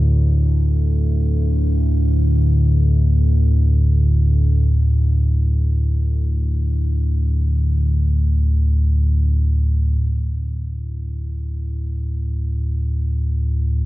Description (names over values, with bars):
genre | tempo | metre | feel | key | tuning
ambient | free time | none | none | unclear | A4 = 440 Hz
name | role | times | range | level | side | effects
deep rumbling drone | solo | 0.0-13.9 s | D2 to A2 | -16 LUFS | equal | built-in reverb, phaser
room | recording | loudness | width
light reverb | dark, warm production | -16 LUFS | side -18 dB against mid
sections
0.0-10.0 A section; 10.0-13.9 A section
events
none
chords
0.0 D5